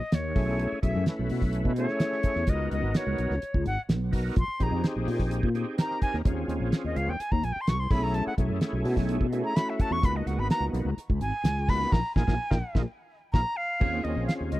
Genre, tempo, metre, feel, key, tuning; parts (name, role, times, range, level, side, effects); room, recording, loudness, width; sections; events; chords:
electric jazz fusion; 127 BPM; 4/4; straight; A4 = 440 Hz
bright reedy jazz flute; melody; 0.0-14.6 s; C#5 to C#6; -32 LUFS; left 1 dB
fretless electric bass; bass; 0.0-14.6 s; Ab1 to B2; -28 LUFS; equal; ensemble chorus
damped 70s drum kit; drums; 0.1-14.6 s; crash cymbal, hi-hat, kick drum, snare drum; -26 LUFS; equal
overdriven tonewheel organ; accompaniment; 0.3-14.6 s; A3 to B4; -33 LUFS; equal; chorus vibrato, slow rotary speaker
small room ambience; dry, close 1970s-style studio recording; -25 LUFS; side -16 dB against mid
0.0-13.8 A section
flute solo 0.0-13.8; band accent 11.9-13.8; drum fill 12.9-13.8; tonewheel organ fill 12.9-13.8
0.4 B13sus4; 2.5 Db13sus4; 4.4 Bb13sus4; 6.3 Eb13sus4; 7.9 B13sus4; 10.0 Db13sus4; 11.9 Bb7sus4; 13.8 Eb13sus4